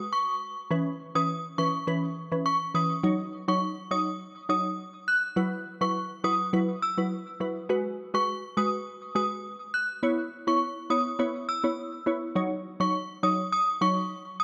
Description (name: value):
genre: dancehall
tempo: 103 BPM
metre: 4/4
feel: straight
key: Eb phrygian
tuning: A4 = 442 Hz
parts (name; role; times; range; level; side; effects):
- synth chime; melody; 0.1-14.4 s; Db6 to Gb6; -31 LUFS; equal; ensemble chorus, tape echo
- glassy wavetable pluck; accompaniment; 0.7-14.0 s; Fb3 to Db5; -31 LUFS; equal; chorus
room: light reverb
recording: dark, warm production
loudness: -28 LUFS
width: mono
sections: 0.0-3.0 A section; 3.0-12.4 B section; 12.4-14.4 C section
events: none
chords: 0.0 N.C.; 0.7 Dbm7; 3.0 Ebm7; 5.4 Gb7sus4; 7.7 Abm7; 10.0 Dbm7; 12.4 Ebm7